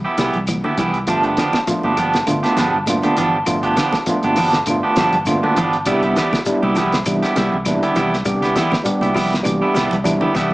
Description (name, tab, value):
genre	afrobeat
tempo	100 BPM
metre	4/4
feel	swing 55% on 16ths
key	unclear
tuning	A4 = 440 Hz
part	clean electric guitar	arpeggios	0.0-10.5 s	D3 to G3	-25 LUFS	left 2 dB	spring reverb, tape echo
part	electric guitar at the edge of break-up	stabs	0.0-10.5 s	E3 to G4	-19 LUFS	right 2 dB	spring reverb
part	fingered electric bass	bass	0.0-10.5 s	G1 to C2	-26 LUFS	equal	none
part	cloth-damped thuddy drum kit	drums	0.2-10.5 s	hi-hat, kick drum, snare drum	-24 LUFS	equal	none
part	congas	percussion	0.2-10.5 s	none	-26 LUFS	right 2 dB	none
part	shekere	percussion	0.2-10.5 s	none	-33 LUFS	left 1 dB	none
part	claves	percussion	0.5-10.2 s	none	-31 LUFS	left 1 dB	none
part	overdriven tine electric piano	accompaniment	1.1-10.3 s	G3 to G4	-20 LUFS	equal	medium tremolo
room	moderate studio ambience, RT60 0.5 s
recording	small speaker sound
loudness	-15 LUFS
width	side -19 dB against mid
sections	0.0-10.5 A section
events	drum fill 9.5-10.5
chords	0.0 Cmaj7; 1.1 G7; 5.9 Cmaj7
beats	0.48 | 1.08 1.68 2.28 2.88 | 3.48 4.07 4.67 5.27 | 5.87 6.47 7.06 7.66 | 8.26 8.86 9.46 10.05